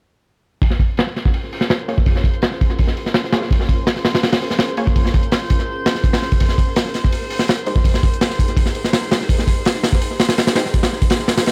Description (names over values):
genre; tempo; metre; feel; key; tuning
drum and bass, jungle; 166 BPM; 4/4; straight; Bb dorian; A4 = 435 Hz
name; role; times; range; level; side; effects
crunchy breakbeat drum kit; drums; 0.6-11.5 s; hi-hat, kick drum, snare drum; -18 LUFS; equal; low-pass filter on kick, low-pass filter on hats, low-pass filter on snare, low-pass filter on room, tape echo
drifting glass-harmonics texture; texture; 1.4-11.5 s; C5 to C6; -33 LUFS; equal; chorus, built-in reverb
orchestra-hit-like synth stab; stabs; 1.9-4.8, 7.7-10.6 s; Ab3 to Db5; -30 LUFS; equal; built-in reverb, tape echo
room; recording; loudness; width
light reverb, small room ambience; echo-heavy mix; -18 LUFS; mono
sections
0.6-11.5 A section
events
filter sweep on drum 0.6-11.5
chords
0.6 Bbm7; 6.4 Abmaj7